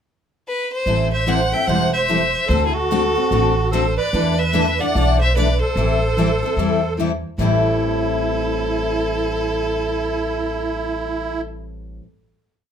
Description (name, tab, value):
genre	acoustic string swing (jazz manouche)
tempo	147 BPM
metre	4/4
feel	swing 62% on 8ths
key	A dorian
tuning	A4 = 440 Hz
part	bright violin	melody	0.5-11.4 s	G#4 to G5	-22 LUFS	equal	none
part	picked steel-string acoustic guitar	accompaniment	0.9-12.1 s	A2 to A4	-24 LUFS	left 7 dB	none
part	picked steel-string acoustic guitar	accompaniment	0.9-12.0 s	A2 to A4	-26 LUFS	right 2 dB	none
part	upright bass	bass	0.9-12.0 s	E1 to E2	-23 LUFS	right 1 dB	none
part	musette accordion	second line	1.1-11.4 s	E4 to E5	-24 LUFS	right 4 dB	none
room	moderate club reverb, RT60 0.7 s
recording	minimal, uncompressed stereo recording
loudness	-17 LUFS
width	side -8 dB against mid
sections	0.0-0.9 pickup bar; 0.9-7.4 A section; 7.4-10.7 final chord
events	none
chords	0.0 N.C.; 0.9 Am7; 2.5 D7; 4.1 E7sus4; 5.8 Am7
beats	0.06 0.46 | 0.87 1.28 1.68 2.09 | 2.50 2.90 3.31 3.72 | 4.12 4.53 4.94 5.35 | 5.76 6.17 6.58 6.99 | 7.40 7.80 8.21 8.62 | 9.03 9.43 9.84 10.25